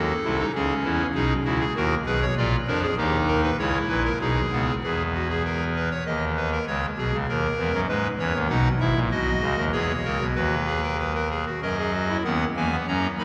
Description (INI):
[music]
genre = classical, baroque-style 3-part fugue for pipe organ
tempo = 98 BPM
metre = 3/4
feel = straight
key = C# minor, B major from 8.5 s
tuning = A4 = 440 Hz
[part]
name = pipe organ, clarinet reed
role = solo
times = 0.0-13.2 s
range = G#1 to B5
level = -24 LUFS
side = equal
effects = none
[sound]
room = wet cathedral reverb, RT60 4.8 s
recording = heard from further back in the room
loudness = -24 LUFS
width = mono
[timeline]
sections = 0.0-4.8 A section; 4.8-12.3 B section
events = none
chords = 0.0 G#7 (rootless); 0.5 C#m; 1.1 G#m/B; 2.4 A#7; 3.0 D#7; 4.2 G#m/B; 4.8 C#m/E (rootless); 6.1 B/D#; 6.7 A#dim; 7.9 G#m; 8.5 B; 9.7 C#m/E; 10.4 B/D#; 11.6 F#; 12.3 B/D#